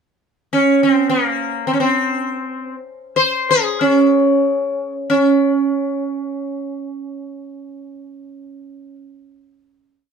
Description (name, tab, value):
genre	indian classical, Hindustani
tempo	free time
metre	none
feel	none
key	unclear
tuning	A4 = 440 Hz
part	sitar	solo	0.5-9.0 s	Bb3 to C5	-16 LUFS	right 1 dB	none
room	wet studio reverb, RT60 0.6 s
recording	minimal, uncompressed stereo recording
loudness	-15 LUFS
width	side -6 dB against mid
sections	0.3-5.1 free-time section; 5.1-7.5 final note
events	none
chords	none